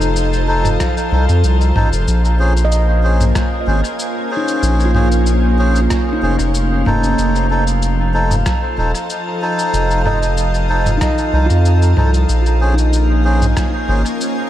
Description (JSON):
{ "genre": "ambient dub", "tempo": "94 BPM", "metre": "4/4", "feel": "swing 53% on 16ths", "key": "Bb minor", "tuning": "A4 = 439 Hz", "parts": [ { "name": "soft additive organ-like pad", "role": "sustained chords", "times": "0.0-14.5 s", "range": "F3 to Ab5", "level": "-21 LUFS", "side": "equal", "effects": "ensemble chorus, built-in reverb" }, { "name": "handpan", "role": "arpeggios", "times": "0.0-14.5 s", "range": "Eb4 to Eb5", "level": "-24 LUFS", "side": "right 2 dB", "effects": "tape echo" }, { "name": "round analog bass", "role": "bass", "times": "0.0-14.0 s", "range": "Eb1 to F2", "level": "-14 LUFS", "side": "equal", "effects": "none" }, { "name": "lo-fi sampler-style drum kit", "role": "drums", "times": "0.0-14.3 s", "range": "cabasa, rim click, toms", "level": "-24 LUFS", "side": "equal", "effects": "studio reverb, dub echo" }, { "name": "drifting glass-harmonics texture", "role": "texture", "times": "0.0-14.5 s", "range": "F5", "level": "-30 LUFS", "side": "equal", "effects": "chorus, built-in reverb" }, { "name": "melodica", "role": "stabs", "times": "0.5-14.0 s", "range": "Db4 to C5", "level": "-21 LUFS", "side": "equal", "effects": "dub echo" }, { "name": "electronic kick drum", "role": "drums", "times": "0.8-13.7 s", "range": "none", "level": "-20 LUFS", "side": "equal", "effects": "studio reverb" } ], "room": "light reverb, digital ambience", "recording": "none", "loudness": "-13 LUFS", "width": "side -12 dB against mid", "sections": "0.0-14.5 A section", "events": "none", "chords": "0.0 F7; 2.1 Bbm9; 7.2 F7; 12.3 Bbm9", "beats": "0.16 0.80 1.44 | 2.08 2.72 3.36 3.99 | 4.63 5.27 5.91 6.55 | 7.19 7.82 8.46 9.10 | 9.74 10.38 11.02 11.65 | 12.29 12.93 13.57 14.21" }